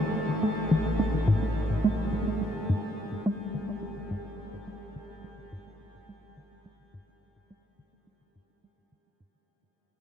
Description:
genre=ambient, sequencer-driven space music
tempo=106 BPM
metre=4/4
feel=straight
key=unclear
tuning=A4 = 440 Hz
part: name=round analog bass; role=bass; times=0.0-9.5 s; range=G#1 to A1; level=-37 LUFS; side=equal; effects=none
part: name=hollow square pluck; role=riff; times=0.4-9.3 s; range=G#2 to A3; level=-27 LUFS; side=equal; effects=chorus, phaser, vintage 12-bit sampler grit, analog delay
room=wet shimmer reverb, RT60 8.8 s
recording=dark, warm production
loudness=-26 LUFS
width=side -8 dB against mid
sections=0.0-9.5 A section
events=fade-out on analog synth bass 0.0-9.5; fade-out 0.0-9.5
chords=0.0 A5; 2.7 G#5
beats=| 0.43 0.99 1.56 2.13 | 2.69 3.26 3.83 4.39 | 4.96 5.52 6.09 6.66 | 7.22 7.79 8.35 8.92

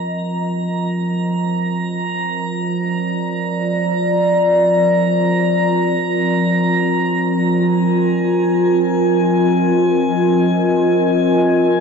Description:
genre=ambient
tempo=free time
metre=none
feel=none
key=unclear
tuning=A4 = 443 Hz
part: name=warbly tape-like pad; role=sustained chords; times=0.0-11.8 s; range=F3 to Eb5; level=-15 LUFS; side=equal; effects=chorus, built-in reverb
part: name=drifting glass-harmonics texture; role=texture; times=0.0-11.8 s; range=Ab5 to Bb5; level=-23 LUFS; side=right 1 dB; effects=chorus, built-in reverb
room=wet huge ambient reverb, RT60 7.9 s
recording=dark, warm production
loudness=-14 LUFS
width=side -5 dB against mid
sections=0.0-11.8 A section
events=none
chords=0.0 Ebsus2; 7.5 Fm7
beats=free time

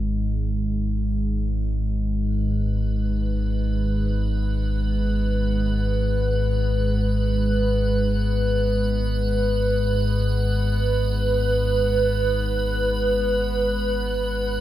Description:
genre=dark ambient drone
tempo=free time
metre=none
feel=none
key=G# minor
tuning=A4 = 440 Hz
part: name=deep rumbling drone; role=drone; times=0.0-14.6 s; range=G#1 to G#2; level=-22 LUFS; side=equal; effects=built-in reverb
part: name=icy glass pad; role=texture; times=3.1-14.6 s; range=B4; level=-25 LUFS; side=right 2 dB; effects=chorus, built-in reverb
room=moderate huge ambient reverb, RT60 8.2 s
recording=none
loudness=-20 LUFS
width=side -13 dB against mid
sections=0.0-14.6 A section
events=none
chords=0.0 N.C.; 2.1 G#m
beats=free time

